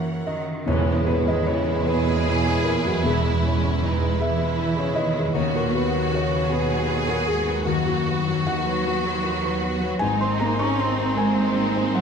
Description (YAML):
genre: cinematic, emotional film score for orchestra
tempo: 52 BPM (dotted quarters)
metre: 6/8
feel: rubato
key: E lydian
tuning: A4 = 440 Hz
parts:
  - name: rich studio violin section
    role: melody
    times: 0.0-12.0 s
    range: D#4 to F#5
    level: -32 LUFS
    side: left 2 dB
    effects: none
  - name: rich studio violin section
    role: second line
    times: 0.0-12.0 s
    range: B#3 to C#5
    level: -28 LUFS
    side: left 1 dB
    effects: none
  - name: felt-muted upright piano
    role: accompaniment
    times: 0.0-12.0 s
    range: D#2 to C#6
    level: -25 LUFS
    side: left 1 dB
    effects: none
  - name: rich studio viola section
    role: accompaniment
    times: 0.0-12.0 s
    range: D#3 to A#4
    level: -31 LUFS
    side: right 3 dB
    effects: none
  - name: concert harp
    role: arpeggios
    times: 0.0-12.0 s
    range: F#2 to B5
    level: -30 LUFS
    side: left 8 dB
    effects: none
  - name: warm studio cello section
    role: bass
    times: 0.0-12.0 s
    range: F#2 to C#4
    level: -28 LUFS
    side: right 2 dB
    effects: none
  - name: rich studio double bass section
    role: bass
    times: 0.7-12.0 s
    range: G#1 to E2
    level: -28 LUFS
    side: right 4 dB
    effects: none
  - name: tam-tam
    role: percussion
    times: 0.7-3.8 s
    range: none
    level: -34 LUFS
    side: left 1 dB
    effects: none
  - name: timpani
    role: percussion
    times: 0.7-1.8 s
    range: E2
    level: -30 LUFS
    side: right 1 dB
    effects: none
room: moderate scoring stage reverb, RT60 1.8 s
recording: minimal, uncompressed stereo recording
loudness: -20 LUFS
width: side -6 dB against mid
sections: 0.7-12.0 A section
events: band accent 0.7-1.5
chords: 0.0 F#; 0.7 E; 5.3 B/D#; 10.0 G#add9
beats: | 0.67 1.87 | 3.04 4.19 | 5.35 6.50 | 7.66 8.86 | 10.02 11.17